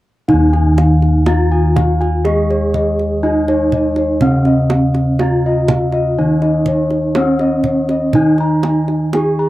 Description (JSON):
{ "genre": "Javanese gamelan", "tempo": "61 BPM", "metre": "4/4", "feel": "straight", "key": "unclear", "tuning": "A4 = 440 Hz", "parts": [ { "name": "gamelan-type bronze metallophone", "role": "melody", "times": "0.3-9.5 s", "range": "Db4-45c to Ab4-35c", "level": "-17 LUFS", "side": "equal", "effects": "none" }, { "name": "gamelan-type bronze metallophone", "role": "accompaniment", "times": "0.3-9.5 s", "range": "Db3-45c to Ab3-35c", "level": "-18 LUFS", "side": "equal", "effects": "cassette tape" }, { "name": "gamelan-type bossed gongs", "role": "arpeggios", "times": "0.3-9.5 s", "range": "Db5-45c to Bb5+25c", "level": "-20 LUFS", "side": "left 2 dB", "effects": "cassette tape" }, { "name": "gamelan-type bossed gongs", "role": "bass", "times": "0.3-9.5 s", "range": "Eb2 to F4+30c", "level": "-17 LUFS", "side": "equal", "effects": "none" }, { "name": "kendang", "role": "percussion", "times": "0.3-9.4 s", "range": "none", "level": "-20 LUFS", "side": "right 3 dB", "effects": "none" } ], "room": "moderate booth ambience, RT60 0.2 s", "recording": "home recording on cassette", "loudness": "-12 LUFS", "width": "side -16 dB against mid", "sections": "0.3-9.5 A section", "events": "none", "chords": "none", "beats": "| 0.28 1.26 2.25 3.23 | 4.21 5.20 6.18 7.17 | 8.15 9.14" }